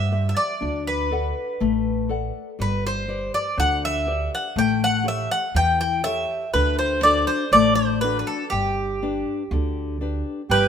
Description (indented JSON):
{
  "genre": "greek folk, Greek bouzouki band",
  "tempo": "121 BPM",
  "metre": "4/4",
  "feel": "straight",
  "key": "G major",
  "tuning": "A4 = 440 Hz",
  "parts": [
    { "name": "Greek bouzouki", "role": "melody", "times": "0.0-10.7 s", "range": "G4 to G5", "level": "-22 LUFS", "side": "equal", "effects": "none" },
    { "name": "nylon-string guitar", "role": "accompaniment", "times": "0.0-10.7 s", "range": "D3 to F#5", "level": "-26 LUFS", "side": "left 8 dB", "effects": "none" },
    { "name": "upright bass", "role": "bass", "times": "0.0-10.7 s", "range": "G1 to G2", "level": "-26 LUFS", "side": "right 2 dB", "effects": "none" },
    { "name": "mellow accordion", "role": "second line", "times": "10.5-10.7 s", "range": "G4", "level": "-21 LUFS", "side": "right 7 dB", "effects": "none" }
  ],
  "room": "moderate plate reverb, RT60 2.7 s",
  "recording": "minimal, uncompressed stereo recording",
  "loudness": "-20 LUFS",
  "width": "side -8 dB against mid",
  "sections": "0.0-10.5 A section",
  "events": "none",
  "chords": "0.0 C; 0.6 D; 2.6 G; 4.6 A7; 6.5 D; 8.5 G"
}